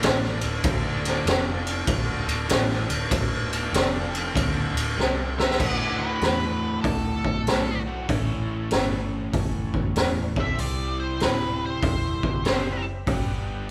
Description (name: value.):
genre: blues rock power trio and southern rock.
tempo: 96 BPM.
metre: 4/4.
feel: swing 65% on 8ths.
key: D mixolydian.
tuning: A4 = 442 Hz.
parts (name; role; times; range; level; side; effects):
overdriven tonewheel organ; sustained chords; 0.0-13.7 s; B3 to E5; -42 LUFS; equal; none.
overdriven electric guitar; riff; 0.0-13.7 s; D2 to C5; -33 LUFS; equal; none.
vintage muted fingered electric bass; bass; 0.0-13.7 s; D1 to E2; -33 LUFS; equal; none.
raw garage drum kit; drums; 0.0-13.3 s; crash cymbal, hi-hat, kick drum, ride cymbal, snare drum; -27 LUFS; equal; none.
octave-fuzz lead guitar; melody; 5.4-12.8 s; A4 to E5; -33 LUFS; equal; wah, distortion.
room: light reverb.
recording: band playing live in one room.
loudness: -25 LUFS.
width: mono.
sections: 0.0-5.6 A section; 5.6-13.7 B section.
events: drum fill 5.0-5.6.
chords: 0.0 D; 8.1 A; 10.3 C; 13.1 G.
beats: 0.02 | 0.64 1.25 1.87 2.49 | 3.11 3.73 4.35 4.97 | 5.59 6.21 6.84 7.46 | 8.08 8.71 9.33 9.96 | 10.58 11.20 11.83 12.45 | 13.08 13.70.